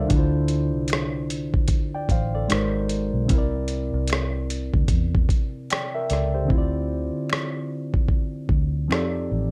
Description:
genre	lo-fi hip hop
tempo	75 BPM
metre	4/4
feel	swing 58% on 16ths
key	D minor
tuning	A4 = 440 Hz
part	reed electric piano	accompaniment	0.0-9.5 s	C3 to G5	-29 LUFS	equal	overdrive, cassette tape, plate reverb
part	vintage muted fingered electric bass	bass	0.0-9.5 s	G#1 to F2	-28 LUFS	equal	none
part	dusty soul sampler-style drum kit	drums	0.1-9.1 s	hi-hat, kick drum, rim click	-25 LUFS	equal	none
part	finger snaps	percussion	0.9-9.1 s	none	-42 LUFS	equal	none
room	light reverb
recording	dark, warm production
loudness	-24 LUFS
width	mono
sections	0.0-6.5 A section; 6.5-9.5 B section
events	hi-hats muted 6.5-9.5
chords	0.1 Dm9; 2.5 G#9; 3.3 C9; 6.5 Dm9; 8.9 F13

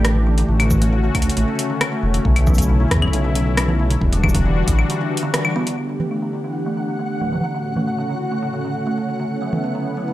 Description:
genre	IDM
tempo	136 BPM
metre	4/4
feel	straight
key	unclear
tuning	A4 = 440 Hz
part	warm analog pad	sustained chords	0.0-10.1 s	A2 to G4	-25 LUFS	left 2 dB	chorus, shimmer reverb
part	kalimba	arpeggios	0.0-10.1 s	C#3 to B3	-24 LUFS	right 1 dB	low-pass filter, tape echo
part	dark detuned saw bass	bass	0.0-4.8 s	E1 to E2	-18 LUFS	equal	none
part	booming analog drum machine	drums	0.0-9.6 s	claves, congas, hi-hat, rim click, shaker	-23 LUFS	equal	overdrive, low-pass filter on perc, low-pass filter on hats, low-pass filter on snare
part	electronic kick drum	drums	0.7-4.8 s	none	-20 LUFS	equal	none
part	flickering grainy texture	texture	6.4-10.1 s	F#5	-30 LUFS	right 1 dB	built-in reverb, shimmer reverb
room	light reverb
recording	none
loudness	-17 LUFS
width	side -14 dB against mid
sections	0.0-5.8 A section; 5.8-10.1 B section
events	break 4.9-5.8; band accent 5.3; filter sweep on drum 5.8-10.1; filter sweep on kalimba 5.8-10.1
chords	0.5 Dmaj7/A; 2.2 Bm11; 4.0 Em9; 5.8 A7sus4; 7.5 Dmaj7/A; 9.3 B9sus4

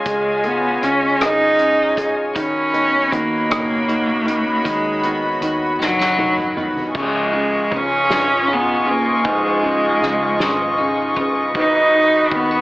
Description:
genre	six-eight pop ballad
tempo	52 BPM (dotted quarters)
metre	6/8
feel	straight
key	unclear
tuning	A4 = 440 Hz
part	clear cello	melody	0.0-12.6 s	F#3 to D#4	-18 LUFS	right 1 dB	none
part	clear concert grand piano	accompaniment	0.0-12.6 s	G#2 to G#4	-23 LUFS	equal	none
part	warm studio string section	sustained chords	0.0-12.6 s	E#4 to C#6	-21 LUFS	equal	none
part	vintage muted fingered electric bass	bass	0.1-12.6 s	F#1 to D#2	-38 LUFS	equal	none
part	soft-mallet drum kit	drums	0.1-12.5 s	crash cymbal, hi-hat, kick drum, ride cymbal, rim click, snare drum, toms	-25 LUFS	equal	none
part	twelve-string electric guitar	arpeggios	2.3-12.6 s	D#3 to F#4	-29 LUFS	right 1 dB	wide subtle chorus
room	light reverb, small room ambience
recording	AM radio sound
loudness	-15 LUFS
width	side -18 dB against mid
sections	0.0-7.0 A section; 7.0-12.6 B section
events	drum fill 5.8-7.0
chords	0.0 C#add9; 2.4 Badd9; 7.0 C#add9; 11.5 Badd9

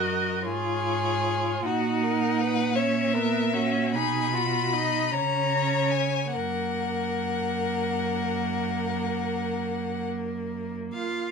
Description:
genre	classical, slow romantic movement for string quartet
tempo	46-54 BPM (dotted quarters)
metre	12/8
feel	rubato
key	F# major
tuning	A4 = 441 Hz
part	rich violin	melody	0.0-10.1 s	C#5 to B5	-30 LUFS	left 7 dB	none
part	clear violin	second line	0.0-11.3 s	F#4 to E#5	-30 LUFS	left 4 dB	none
part	rich viola	accompaniment	0.0-11.1 s	A#3 to F#4	-30 LUFS	right 3 dB	none
part	rich cello	bass	0.0-11.3 s	F#2 to E#4	-30 LUFS	right 4 dB	none
room	moderate studio reverb, RT60 0.5 s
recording	minimal, uncompressed stereo recording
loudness	-24 LUFS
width	side -5 dB against mid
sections	0.0-11.3 A section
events	none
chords	0.0 F#; 1.6 F#7/A#; 3.9 B; 5.1 A#m7/C#; 6.3 F#

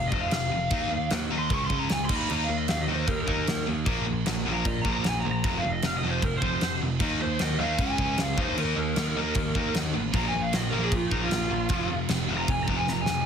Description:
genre	hard rock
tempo	153 BPM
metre	4/4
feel	straight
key	F minor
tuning	A4 = 435 Hz
part	lead guitar through a small cranked amp	melody	0.0-13.3 s	Eb4 to Db6	-30 LUFS	right 2 dB	overdrive
part	overdriven electric guitar	riff	0.0-13.2 s	F2 to Eb4	-32 LUFS	left 12 dB	none
part	modern bright picked electric bass	bass	0.0-13.3 s	F1 to Bb2	-32 LUFS	equal	none
part	gated 80s drum kit	drums	0.1-13.2 s	crash cymbal, kick drum, snare drum	-29 LUFS	equal	none
part	sludgy distorted guitar	riff	0.7-13.2 s	F2 to Eb4	-33 LUFS	right 11 dB	overdrive
part	sludgy distorted guitar	riff	7.0-13.3 s	F2 to Eb4	-34 LUFS	right 1 dB	overdrive
room	small room ambience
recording	heavily compressed radio sound, multiband compression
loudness	-24 LUFS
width	side -7 dB against mid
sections	0.0-13.3 A section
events	lead electric guitar solo 0.0-13.3; drum fill 12.9-13.3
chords	0.0 F5; 0.7 Eb5; 1.5 Db5; 2.1 Eb5; 3.9 Bb5; 5.4 F5; 7.0 Eb5; 7.8 Db5; 8.4 Eb5; 10.1 Bb5; 11.7 F5

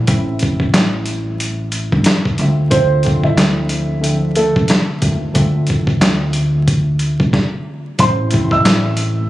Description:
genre	hip hop, boom-bap hip-hop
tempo	91 BPM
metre	4/4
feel	swing 60% on 16ths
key	A minor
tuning	A4 = 440 Hz
part	tine electric piano	accompaniment	0.0-9.3 s	A2 to E5	-21 LUFS	left 1 dB	medium stereo tremolo, cassette tape, high-pass filter, low-pass filter
part	upright bass	bass	0.0-9.3 s	G1 to D#2	-17 LUFS	equal	none
part	dusty soul sampler-style drum kit	drums	0.1-9.2 s	handclaps, hi-hat, kick drum, snare drum	-16 LUFS	equal	overdrive
part	dark upright piano	melody	2.7-9.3 s	A3 to E6	-19 LUFS	right 2 dB	high-pass filter, low-pass filter, digital delay
part	hollow soft pad	sustained chords	8.0-9.3 s	C3 to E5	-31 LUFS	left 2 dB	none
room	light reverb, digital ambience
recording	recorded on a phone in the room, studio reverb, vinyl crackle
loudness	-13 LUFS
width	side -15 dB against mid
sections	0.0-8.0 A section; 8.0-9.3 B section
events	stop 7.3-8.0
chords	0.0 Am; 2.4 Dm9; 8.0 Am

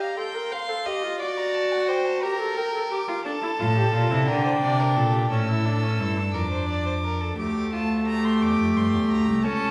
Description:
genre	classical, baroque-style fugue for string quartet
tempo	58 BPM (dotted quarters)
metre	6/8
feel	straight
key	unclear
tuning	A4 = 440 Hz
part	rich violin	melody	0.0-9.7 s	F#5 to E6	-33 LUFS	equal	none
part	rich violin	second line	0.0-9.7 s	F4 to G5	-32 LUFS	equal	none
part	rich viola	accompaniment	0.0-9.7 s	A3 to C5	-28 LUFS	equal	none
part	clear cello	bass	3.6-9.7 s	C2 to D3	-27 LUFS	equal	none
room	wet recital hall reverb, RT60 1.6 s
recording	heard from further back in the room, vinyl crackle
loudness	-24 LUFS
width	mono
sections	0.0-7.4 A section; 7.4-9.7 B section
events	none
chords	0.2 Am7b5; 1.2 D/F#; 2.2 Gm; 3.3 Dm (rootless); 4.3 Bb69; 5.3 A; 6.3 Dm/F; 7.4 Dm; 8.4 Em7b5

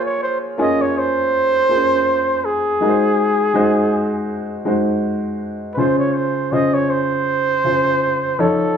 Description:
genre	soul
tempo	81 BPM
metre	4/4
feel	swing 54% on 16ths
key	Db major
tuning	A4 = 440 Hz
part	breathy flugelhorn	melody	0.0-8.8 s	Ab4 to Eb5	-18 LUFS	right 1 dB	none
part	warm baby grand piano	accompaniment	0.0-8.8 s	Db3 to Db5	-19 LUFS	left 1 dB	none
room	moderate large studio reverb, RT60 1.1 s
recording	band playing live in one room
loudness	-15 LUFS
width	side -7 dB against mid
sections	0.0-8.8 A section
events	none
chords	0.0 Bbm7; 2.8 Ab7; 5.8 Dbmaj7

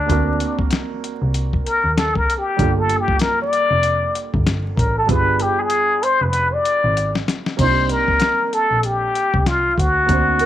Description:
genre	hip hop, jazz-hop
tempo	96 BPM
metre	4/4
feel	swing 59% on 16ths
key	C dorian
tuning	A4 = 440 Hz
part	trumpet with plunger mute	melody	0.0-10.5 s	D4 to D5	-17 LUFS	left 2 dB	none
part	warm grand piano	accompaniment	0.0-10.5 s	G3 to C5	-27 LUFS	right 9 dB	none
part	rich double bass	bass	0.1-10.3 s	F1 to Eb2	-21 LUFS	equal	none
part	dusty soul sampler-style drum kit	drums	0.1-10.5 s	crash cymbal, hi-hat, kick drum, snare drum	-22 LUFS	left 1 dB	none
part	vibraphone with soft mallets	second line	10.4-10.5 s	Bb4	-18 LUFS	right 13 dB	none
room	small room ambience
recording	1960s-style stereo, vinyl crackle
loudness	-16 LUFS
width	side -12 dB against mid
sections	0.0-7.6 A section; 7.6-10.5 B section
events	muted trumpet solo 0.0-7.6; drum fill 5.1-7.6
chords	0.1 D7b13; 2.6 Gm7; 5.1 G7b9; 7.6 Cm9

